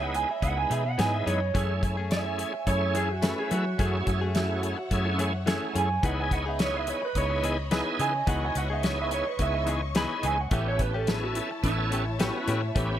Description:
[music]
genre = straight-eighth soul blues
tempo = 107 BPM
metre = 4/4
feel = swing 54% on 16ths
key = C# minor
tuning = A4 = 440 Hz
[part]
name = electric guitar through a small old amp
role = second line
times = 0.0-12.7 s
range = E4 to B5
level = -31 LUFS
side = right 4 dB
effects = none
[part]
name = bright tonewheel organ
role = accompaniment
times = 0.0-13.0 s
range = G#3 to B4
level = -32 LUFS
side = right 2 dB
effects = overdrive, chorus vibrato, slow rotary speaker
[part]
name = warm studio string section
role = sustained chords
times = 0.0-13.0 s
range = C#5 to C#6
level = -37 LUFS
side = left 2 dB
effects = none
[part]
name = direct-recorded clean electric guitar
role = stabs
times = 0.0-12.9 s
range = E3 to G#4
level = -34 LUFS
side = left 4 dB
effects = warbly pitch drift, analog delay
[part]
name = vintage muted fingered electric bass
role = bass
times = 0.0-13.0 s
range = A1 to F#3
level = -30 LUFS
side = equal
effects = none
[part]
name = damped 70s drum kit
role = drums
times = 0.1-12.9 s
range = hi-hat, kick drum, snare drum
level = -29 LUFS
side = left 1 dB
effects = none
[sound]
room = light reverb, small room ambience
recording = none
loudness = -25 LUFS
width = side -11 dB against mid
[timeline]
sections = 0.0-13.0 A section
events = clean electric guitar solo 0.0-13.0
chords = 0.0 C#m9; 1.5 F#m9; 6.0 C#m9; 10.5 A7

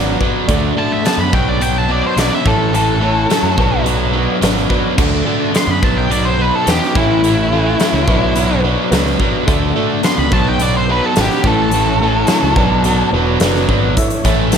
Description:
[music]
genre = classic rock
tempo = 107 BPM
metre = 4/4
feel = straight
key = unclear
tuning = A4 = 438 Hz
[part]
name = dark upright piano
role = accompaniment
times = 0.0-14.6 s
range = C#4 to F#5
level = -23 LUFS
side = right 3 dB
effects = slapback echo
[part]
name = tonewheel organ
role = sustained chords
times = 0.0-14.6 s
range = A3 to D#5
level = -30 LUFS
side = equal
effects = none
[part]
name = biting overdriven guitar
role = riff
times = 0.0-14.6 s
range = A2 to B3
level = -20 LUFS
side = right 10 dB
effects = slapback echo
[part]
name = distorted electric guitar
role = riff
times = 0.0-14.6 s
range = A2 to B3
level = -20 LUFS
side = left 10 dB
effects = distortion
[part]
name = growling picked electric bass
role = bass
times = 0.0-14.6 s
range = E1 to F#2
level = -18 LUFS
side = equal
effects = overdrive
[part]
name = big rock drum kit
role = drums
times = 0.2-14.6 s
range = crash cymbal, hi-hat, kick drum, snare drum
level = -18 LUFS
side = equal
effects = none
[part]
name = octave-fuzz lead guitar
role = melody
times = 0.8-13.1 s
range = E4 to C6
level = -19 LUFS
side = equal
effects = distortion
[sound]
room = moderate lush hall reverb, RT60 2.0 s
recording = big arena sound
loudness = -12 LUFS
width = side -7 dB against mid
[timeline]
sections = 0.0-14.0 A section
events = lead electric guitar solo 0.0-14.0; upright piano fill 3.9-5.0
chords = 0.5 D; 1.3 B; 2.5 A; 3.6 Bm; 5.0 D; 5.8 B; 7.0 A; 8.1 Bm; 9.5 D; 10.3 B; 11.4 A; 12.6 Bm; 14.0 A

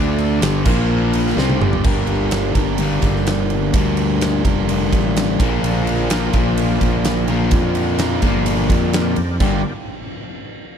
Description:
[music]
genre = classic rock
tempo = 127 BPM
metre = 4/4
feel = straight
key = G minor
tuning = A4 = 440 Hz
[part]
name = tonewheel organ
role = sustained chords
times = 0.0-1.8, 5.6-9.7 s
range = A3 to F5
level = -32 LUFS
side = right 1 dB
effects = slow rotary speaker, overdrive, chorus vibrato
[part]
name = biting overdriven guitar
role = riff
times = 0.0-9.6 s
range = G2 to Bb4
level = -22 LUFS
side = right 15 dB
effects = spring reverb
[part]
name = crunchy overdriven guitar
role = riff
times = 0.0-9.6 s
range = G2 to D4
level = -20 LUFS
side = left 13 dB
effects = spring reverb
[part]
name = fuzz fingered electric bass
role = bass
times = 0.0-9.6 s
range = F1 to F2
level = -21 LUFS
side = right 1 dB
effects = overdrive
[part]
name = huge arena drum kit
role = drums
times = 0.2-9.5 s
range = crash cymbal, kick drum, ride cymbal, snare drum, toms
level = -21 LUFS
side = right 1 dB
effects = none
[sound]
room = little or no reverb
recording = none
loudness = -15 LUFS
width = side -8 dB against mid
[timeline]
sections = 0.0-1.8 A section; 1.8-9.4 B section; 9.4-10.8 C section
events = drum fill 1.4-1.8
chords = 0.4 G5; 0.7 Bb5; 1.4 Gm; 5.4 Bb6; 9.4 Gm

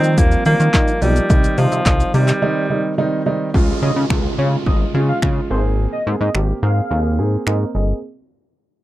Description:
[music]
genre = dance-pop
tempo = 107 BPM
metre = 4/4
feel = straight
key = Ab major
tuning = A4 = 440 Hz
[part]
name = clear alto saxophone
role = melody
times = 0.0-2.9 s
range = F3 to C4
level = -19 LUFS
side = equal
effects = slapback echo
[part]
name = warm grand piano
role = accompaniment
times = 0.0-8.0 s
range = Eb3 to Bb4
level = -22 LUFS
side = right 2 dB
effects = sidechain pumping, low-pass filter
[part]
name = chorused synth bass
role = bass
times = 0.0-7.9 s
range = G1 to Eb3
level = -17 LUFS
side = equal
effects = sidechain pumping
[part]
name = punchy analog drum machine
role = drums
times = 0.0-7.6 s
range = finger snaps, handclaps, hi-hat, kick drum, shaker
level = -17 LUFS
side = equal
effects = none
[part]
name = downlifter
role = sound effects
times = 3.5-8.0 s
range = none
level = -30 LUFS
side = right 1 dB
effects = none
[part]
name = octave-doubled lead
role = melody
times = 3.8-7.8 s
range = C5 to F5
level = -25 LUFS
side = equal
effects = chorus, low-pass filter, slapback echo
[sound]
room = little or no reverb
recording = dry, close 1970s-style studio recording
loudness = -15 LUFS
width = side -15 dB against mid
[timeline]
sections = 0.0-3.5 A section; 3.5-8.0 B section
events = break 2.4-3.5; filter sweep 3.5-8.0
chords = 0.0 Ebadd9; 1.3 Cm; 3.5 Db; 5.5 Abadd9

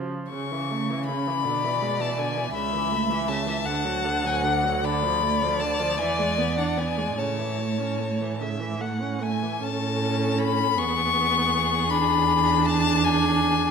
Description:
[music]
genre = classical, slow romantic movement for string quartet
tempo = 48-56 BPM (dotted quarters)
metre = 6/8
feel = rubato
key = A major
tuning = A4 = 441 Hz
[part]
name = rich viola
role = accompaniment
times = 0.0-13.7 s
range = C#3 to D4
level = -28 LUFS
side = right 4 dB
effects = none
[part]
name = rich cello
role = bass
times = 0.0-13.7 s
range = C#2 to C#3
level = -29 LUFS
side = right 4 dB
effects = none
[part]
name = warm violin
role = melody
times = 0.3-13.7 s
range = F#5 to C#6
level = -26 LUFS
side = left 9 dB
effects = none
[part]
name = rich violin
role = second line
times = 1.5-13.7 s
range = G#4 to G#5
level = -29 LUFS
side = left 2 dB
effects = none
[sound]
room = wet recital hall reverb, RT60 1.5 s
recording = none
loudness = -22 LUFS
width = side -6 dB against mid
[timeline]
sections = 0.0-9.6 A section; 9.6-13.7 B section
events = none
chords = 0.3 A/C#; 1.5 E7/B; 2.5 A/C#; 3.7 D; 4.8 Bm7b5/D; 6.0 E7; 7.2 A; 10.8 E; 11.9 E7

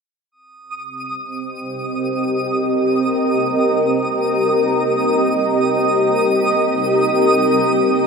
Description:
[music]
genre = ambient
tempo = free time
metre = none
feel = none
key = C minor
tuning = A4 = 437 Hz
[part]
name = granular cloud pad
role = sustained chords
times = 1.3-8.1 s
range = C4 to Eb5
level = -16 LUFS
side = equal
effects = built-in reverb, shimmer reverb
[part]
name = twinkling granular texture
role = texture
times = 0.7-8.1 s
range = Eb6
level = -23 LUFS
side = right 2 dB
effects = built-in reverb, shimmer reverb
[sound]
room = wet cathedral reverb, RT60 7.0 s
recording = none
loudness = -15 LUFS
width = side -5 dB against mid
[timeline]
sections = 0.3-8.1 A section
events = none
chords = 0.3 Cm7

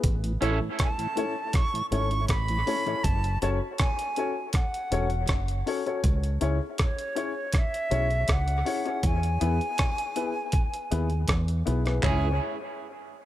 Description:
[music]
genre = dub reggae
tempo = 80 BPM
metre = 4/4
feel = straight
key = C# minor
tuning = A4 = 440 Hz
[part]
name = deep dub fingered electric bass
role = bass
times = 0.0-12.4 s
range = E1 to E2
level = -26 LUFS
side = equal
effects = none
[part]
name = breakbeat sampler-style drum kit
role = drums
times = 0.0-12.2 s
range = handclaps, hi-hat, kick drum, rim click, toms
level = -27 LUFS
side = equal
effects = none
[part]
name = mellow tonewheel organ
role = accompaniment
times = 0.2-3.0, 12.0-12.3 s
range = A2 to E4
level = -36 LUFS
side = equal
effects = chorus vibrato, slow rotary speaker, dub echo
[part]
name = electric guitar at the edge of break-up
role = accompaniment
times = 0.4-0.6, 12.0-12.3 s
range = C#4 to A4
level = -35 LUFS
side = right 7 dB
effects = dub echo
[part]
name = warm upright piano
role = stabs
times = 0.4-12.3 s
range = B3 to C#5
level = -32 LUFS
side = left 5 dB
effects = dub echo
[part]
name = bright silver concert flute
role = melody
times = 0.8-12.4 s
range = C#5 to C#6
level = -31 LUFS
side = right 1 dB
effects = dub echo
[sound]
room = little or no reverb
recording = none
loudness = -24 LUFS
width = side -13 dB against mid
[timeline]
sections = 0.0-12.0 A section; 12.0-13.3 B section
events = break 0.0-12.0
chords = 0.0 A; 3.0 F#m; 6.0 C#m; 9.0 E; 12.0 C#m

